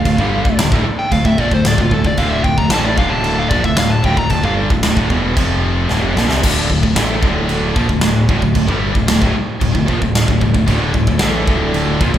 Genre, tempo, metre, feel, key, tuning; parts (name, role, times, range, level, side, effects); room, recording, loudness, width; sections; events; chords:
heavy metal; 113 BPM; 4/4; straight; D minor; A4 = 441 Hz
dark smooth lead guitar; melody; 0.0-4.5 s; F4 to Bb5; -20 LUFS; equal; overdrive
pipe organ, clarinet reed; sustained chords; 0.0-6.4, 10.7-12.2 s; D3 to F5; -30 LUFS; equal
distorted electric guitar; riff; 0.0-12.2 s; D2 to A3; -20 LUFS; equal; distortion
scooped high-gain guitar; riff; 0.0-12.2 s; D2 to A3; -22 LUFS; left 7 dB; distortion
tight distorted guitar; riff; 0.0-12.2 s; D2 to A3; -21 LUFS; right 5 dB; distortion
modern bright picked electric bass; bass; 0.0-12.2 s; D1 to C2; -21 LUFS; equal
big rock drum kit; drums; 0.1-12.2 s; china cymbal, crash cymbal, kick drum, snare drum; -17 LUFS; equal
moderate church reverb, RT60 2.7 s; band playing live in one room; -13 LUFS; side -11 dB against mid
0.0-6.4 A section; 6.4-12.2 B section
lead electric guitar solo 0.0-6.4; drum fill 5.9-6.4
0.0 Dm; 5.4 F5; 5.9 Dm